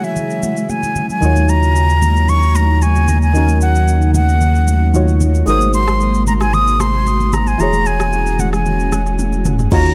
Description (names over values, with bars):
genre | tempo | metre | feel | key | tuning
amapiano | 113 BPM | 4/4 | straight | unclear | A4 = 441 Hz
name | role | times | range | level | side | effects
breathy concert flute | melody | 0.0-9.9 s | E5 to Eb6 | -21 LUFS | equal | tape echo
warm analog keys | accompaniment | 0.0-9.9 s | Eb3 to C#5 | -24 LUFS | equal | chorus, tape echo
ethereal airy pad | sustained chords | 0.0-9.9 s | C3 to Gb4 | -25 LUFS | equal | ensemble chorus, built-in reverb, sidechain pumping
deep house drum kit | drums | 0.0-9.9 s | crash cymbal, kick drum, rim click, shaker, toms | -27 LUFS | equal | tape echo
congas | percussion | 0.2-9.7 s | none | -26 LUFS | equal | tape echo
round analog bass | bass | 1.2-9.7 s | E1 to Eb2 | -17 LUFS | equal | none
hollow log drum bass | bass | 9.7-9.9 s | Eb2 | -16 LUFS | equal | none
room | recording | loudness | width
little or no reverb | echo-heavy mix | -14 LUFS | mono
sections
0.0-9.7 A section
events
drum fill 9.2-9.7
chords
0.0 E69; 1.2 Ebm7; 5.5 Ab9; 7.6 E69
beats
0.16 0.69 | 1.22 1.75 2.29 2.82 | 3.35 3.88 4.41 4.94 | 5.47 6.00 6.53 7.07 | 7.60 8.13 8.66 9.19 | 9.72